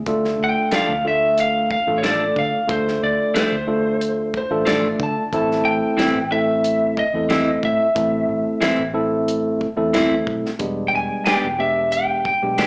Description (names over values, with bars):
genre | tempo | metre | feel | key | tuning
straight-eighth soul blues | 91 BPM | 4/4 | straight | A minor | A4 = 440 Hz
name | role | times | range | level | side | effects
vintage muted fingered electric bass | bass | 0.0-12.7 s | E1 to D3 | -30 LUFS | equal | none
tine electric piano | accompaniment | 0.1-12.7 s | G3 to A4 | -21 LUFS | equal | medium stereo tremolo, slapback echo
warm soul drum kit | drums | 0.1-12.7 s | hi-hat, kick drum, snare drum | -26 LUFS | equal | none
lightly driven lead guitar | melody | 0.4-12.6 s | C5 to G#5 | -20 LUFS | equal | slapback echo
clean electric guitar | stabs | 0.7-12.7 s | E3 to G4 | -20 LUFS | equal | slapback echo
electric guitar through a small old amp | second line | 4.4-5.7 s | C5 to A5 | -26 LUFS | equal | slapback echo, analog delay
room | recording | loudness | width
moderate club reverb, RT60 0.9 s | live gig heard through the venue's PA, club reverb, small speaker sound | -17 LUFS | side -32 dB against mid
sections
0.0-12.7 A section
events
none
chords
0.1 Dm; 5.3 Am; 10.6 E7#9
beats
| 0.06 0.72 1.38 2.03 | 2.69 3.35 4.01 4.66 | 5.32 5.98 6.64 7.30 | 7.96 8.62 9.28 9.94 | 10.60 11.26 11.92 12.59